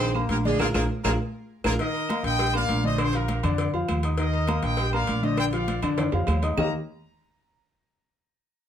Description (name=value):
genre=latin, salsa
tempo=201 BPM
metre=4/4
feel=straight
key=Eb major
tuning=A4 = 441 Hz
part: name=brilliant horn section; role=melody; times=0.0-1.7 s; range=Ab3 to C5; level=-28 LUFS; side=right 2 dB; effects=plate reverb
part: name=warm grand piano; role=accompaniment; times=0.0-6.7 s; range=D3 to Eb6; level=-28 LUFS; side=left 3 dB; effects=none
part: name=upright bass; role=bass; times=0.0-6.7 s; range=Bb1 to F2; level=-27 LUFS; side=right 1 dB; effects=none
part: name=agogo bells and timbales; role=percussion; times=0.0-6.6 s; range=none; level=-35 LUFS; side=right 5 dB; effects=none
part: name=congas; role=percussion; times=0.0-6.6 s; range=none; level=-32 LUFS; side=right 1 dB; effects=none
part: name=claves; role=percussion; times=0.1-6.6 s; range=none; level=-38 LUFS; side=right 7 dB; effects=none
part: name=cowbell and bongos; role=percussion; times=0.3-6.6 s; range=none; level=-35 LUFS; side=left 3 dB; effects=none
part: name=bright trumpet section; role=melody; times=1.8-6.7 s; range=G4 to Bb5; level=-29 LUFS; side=left 1 dB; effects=none
room=moderate studio reverb, RT60 0.5 s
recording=none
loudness=-22 LUFS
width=side -9 dB against mid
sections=0.0-1.8 A section; 1.8-6.6 B section; 6.6-7.8 C section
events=drum fill 0.6-1.8, 6.0-6.6; band accent 0.6-1.8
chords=0.0 Bb7; 0.6 Bb5; 1.8 Eb; 3.0 Bb; 4.2 Eb; 5.4 Bb; 6.6 Eb5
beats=0.00 0.30 | 0.60 0.90 1.20 1.50 | 1.79 2.09 2.39 2.69 | 2.99 3.29 3.58 3.88 | 4.18 4.48 4.78 5.08 | 5.38 5.68 5.98 6.28 | 6.58